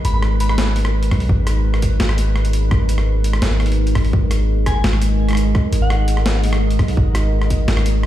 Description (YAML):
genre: half-time drum and bass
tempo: 169 BPM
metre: 4/4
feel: half-time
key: G# minor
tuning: A4 = 440 Hz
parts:
  - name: soft synth bell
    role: melody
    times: 0.0-0.6, 4.7-6.2 s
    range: F#5 to B5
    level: -29 LUFS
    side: equal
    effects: chorus, digital delay
  - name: deep dark ambient pad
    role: sustained chords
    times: 0.0-8.1 s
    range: G#3 to D#5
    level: -23 LUFS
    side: equal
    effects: chorus, built-in reverb, sidechain pumping
  - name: long sustained 808-style bass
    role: bass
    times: 0.0-8.1 s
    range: G#1 to B1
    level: -17 LUFS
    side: equal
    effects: none
  - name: boom bap sampler-style drum kit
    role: drums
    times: 0.0-8.1 s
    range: hi-hat, rim click, snare drum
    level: -25 LUFS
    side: equal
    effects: small room ambience
  - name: electronic kick drum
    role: drums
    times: 1.1-7.6 s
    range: none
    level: -18 LUFS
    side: equal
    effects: small room ambience
room: little or no reverb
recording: played on a big sound system in a bare room, large studio reverb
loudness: -15 LUFS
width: side -13 dB against mid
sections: 0.0-8.1 A section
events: none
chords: 0.0 G#m